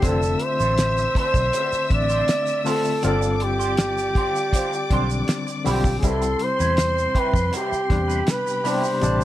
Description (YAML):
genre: lush 1970s-style soul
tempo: 80 BPM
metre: 4/4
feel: straight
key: C major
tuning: A4 = 440 Hz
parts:
  - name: breathy flugelhorn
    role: melody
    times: 0.0-9.2 s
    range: G4 to D5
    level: -23 LUFS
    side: right 1 dB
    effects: none
  - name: warm studio string section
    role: second line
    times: 0.0-9.2 s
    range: C4 to E6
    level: -30 LUFS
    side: left 5 dB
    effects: none
  - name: barky reed electric piano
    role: accompaniment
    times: 0.0-9.2 s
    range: B2 to F4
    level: -27 LUFS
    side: left 4 dB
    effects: overdrive, medium tremolo
  - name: electric guitar through a small old amp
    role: riff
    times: 0.0-9.2 s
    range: D4 to D5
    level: -31 LUFS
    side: right 7 dB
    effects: wah, analog chorus
  - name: vintage muted fingered electric bass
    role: bass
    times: 0.0-9.2 s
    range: F1 to F2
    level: -25 LUFS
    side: equal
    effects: none
  - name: cloth-damped thuddy drum kit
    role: drums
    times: 0.0-9.2 s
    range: hi-hat, kick drum, snare drum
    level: -24 LUFS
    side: equal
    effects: none
  - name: tube shaker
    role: percussion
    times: 0.0-9.2 s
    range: none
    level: -37 LUFS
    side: right 15 dB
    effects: none
room: little or no reverb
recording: none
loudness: -19 LUFS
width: side -13 dB against mid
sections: 0.0-9.2 A section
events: none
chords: 0.0 F6; 3.0 G7sus4; 6.0 Cmaj7